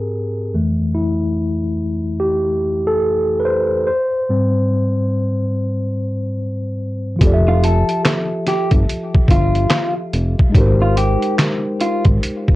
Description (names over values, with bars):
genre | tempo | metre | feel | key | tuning
lo-fi hip hop | 72 BPM | 4/4 | swing 61% on 16ths | F major | A4 = 436 Hz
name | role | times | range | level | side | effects
mellow tine electric piano | accompaniment | 0.0-12.6 s | F2 to E5 | -18 LUFS | equal | medium stereo tremolo, cassette tape, low-pass filter
fat analog bass | bass | 7.2-12.2 s | F1 to Ab1 | -15 LUFS | equal | transformer saturation
trip hop sampler-style drum kit | drums | 7.2-12.6 s | handclaps, hi-hat, kick drum, snare drum | -15 LUFS | equal | none
electric guitar through a small old amp | melody | 7.5-12.0 s | F4 to A4 | -21 LUFS | equal | low-pass filter, tape echo
room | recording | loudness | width
light reverb | worn, warbling old tape, cassette tape, warbly pitch drift | -15 LUFS | side -17 dB against mid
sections
0.0-7.2 A section; 7.2-12.6 B section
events
tine electric piano solo 0.0-7.2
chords
0.0 Abmaj9; 0.5 Fmaj7; 3.9 Abmaj7; 7.2 Fmaj9; 10.5 Abmaj9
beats
| 0.54 1.38 2.21 3.04 | 3.88 4.71 5.54 6.38 | 7.21 8.04 8.88 9.71 | 10.54 11.38 12.21